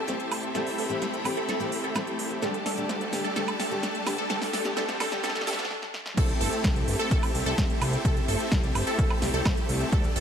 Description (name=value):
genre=EDM, festival progressive house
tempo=128 BPM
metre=4/4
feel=straight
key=unclear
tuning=A4 = 440 Hz
part: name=bright studio string section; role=sustained chords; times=0.0-10.2 s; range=G4 to B5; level=-38 LUFS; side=left 2 dB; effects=sidechain pumping
part: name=wide unison pluck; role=arpeggios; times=0.0-10.2 s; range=A4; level=-34 LUFS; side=right 1 dB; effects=phaser, sidechain pumping, ping-pong delay
part: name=supersaw chords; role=riff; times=0.0-10.2 s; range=G3 to A4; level=-31 LUFS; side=equal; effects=sidechain pumping, low-pass filter, ping-pong delay
part: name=fat analog bass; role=bass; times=0.0-10.2 s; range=D1 to D2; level=-34 LUFS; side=equal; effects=none
part: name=riser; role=sound effects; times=0.8-5.7 s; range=none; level=-41 LUFS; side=right 1 dB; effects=none
part: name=picked steel-string acoustic guitar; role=accompaniment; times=0.1-5.5 s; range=D3 to G4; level=-35 LUFS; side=left 2 dB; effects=sidechain pumping, ping-pong delay
part: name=big-room dance drum kit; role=drums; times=0.1-10.2 s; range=crash cymbal, hi-hat, snare drum, woodblock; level=-32 LUFS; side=right 1 dB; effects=overdrive
part: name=electronic kick drum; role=drums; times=6.2-10.0 s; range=none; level=-26 LUFS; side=equal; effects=overdrive
room=light reverb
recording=high-pass filter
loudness=-25 LUFS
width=side -8 dB against mid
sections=0.0-6.2 A section; 6.2-10.2 B section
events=build-up 0.0-6.2; drum fill 0.0-5.7, 5.7-6.2; filter sweep on supersaw synth 0.0-6.2; filter sweep on synth pluck 0.0-6.2; stop 5.7-6.2; drop 6.2-10.2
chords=0.0 C6; 2.4 Dsus4; 6.2 C6